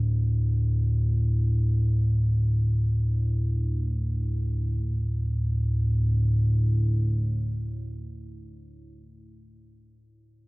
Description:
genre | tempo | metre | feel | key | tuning
ambient | free time | none | none | unclear | A4 = 440 Hz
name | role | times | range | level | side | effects
deep rumbling drone | drone | 0.0-8.1 s | D2 to A2 | -23 LUFS | equal | built-in reverb, wide subtle chorus
room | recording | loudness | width
light reverb | worn, warbling old tape, cassette tape, warbly pitch drift | -23 LUFS | side -25 dB against mid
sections
0.0-4.8 A section; 4.8-8.7 B section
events
none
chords
0.0 D5

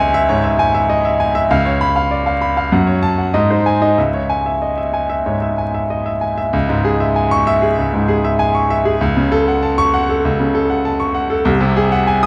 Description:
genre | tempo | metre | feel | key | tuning
classical, virtuoso piano study | 97 BPM | 4/4 | rubato | C# minor | A4 = 440 Hz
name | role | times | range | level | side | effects
bright grand piano | solo | 0.0-12.3 s | B#1 to D#6 | -16 LUFS | equal | none
room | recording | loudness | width
wet recital hall reverb, RT60 1.4 s | dark, warm production, vinyl crackle | -16 LUFS | mono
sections
0.0-6.5 A section; 6.5-12.3 A section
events
none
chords
0.0 C#m; 1.5 C#7; 2.7 F#m; 3.3 G#; 4.0 C#m; 9.0 F#m/C#; 11.5 G#7/B#

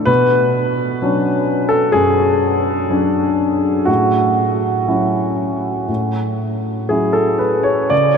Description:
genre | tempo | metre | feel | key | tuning
neoclassical minimalist piano | 58-65 BPM | 4/4 | rubato | F# minor | A4 = 441 Hz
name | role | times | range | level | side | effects
warm concert grand piano | solo | 0.0-8.2 s | F#2 to D5 | -14 LUFS | equal | none
room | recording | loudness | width
wet huge ambient reverb, RT60 7.5 s | in a vast, echoing space | -14 LUFS | side -6 dB against mid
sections
0.0-8.2 A section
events
none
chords
0.1 Bmadd9; 3.9 F#m7/A

